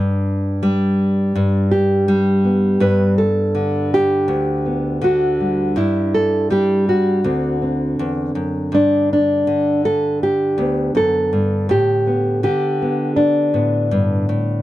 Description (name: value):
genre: folk, solo fingerstyle acoustic guitar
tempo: 82 BPM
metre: 4/4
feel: straight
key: G major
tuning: A4 = 440 Hz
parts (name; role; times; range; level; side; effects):
- nylon-string guitar; solo; 0.0-14.6 s; D2 to B4; -15 LUFS; equal; none
room: light reverb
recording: dry, close 1970s-style studio recording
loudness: -15 LUFS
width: side -15 dB against mid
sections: 0.0-8.7 A section; 8.7-14.6 B section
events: none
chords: 0.0 G; 2.8 Gadd9; 5.7 N.C.; 7.2 D7; 8.7 G; 11.7 Dsus4/A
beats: 0.62 1.35 2.08 | 2.81 3.55 4.28 5.01 | 5.75 6.49 7.23 7.98 | 8.73 9.47 10.22 10.96 | 11.70 12.43 13.17 13.91